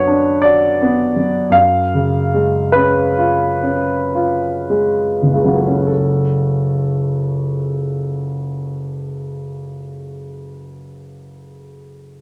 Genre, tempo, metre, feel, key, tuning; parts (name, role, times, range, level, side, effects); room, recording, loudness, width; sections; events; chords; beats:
classical, romantic nocturne for solo piano; 32-56 BPM; 3/4; rubato; F# minor; A4 = 440 Hz
warm concert grand piano; solo; 0.0-12.2 s; F#1 to E#5; -17 LUFS; equal
light reverb; -16 LUFS; mono
0.0-5.9 A section; 5.9-10.6 B section
slowing down 0.0-5.9
0.0 Bm/F#; 1.5 C#7/F#; 5.9 F#m
0.44 | 1.54 2.75 4.15 | 5.89 7.47 9.01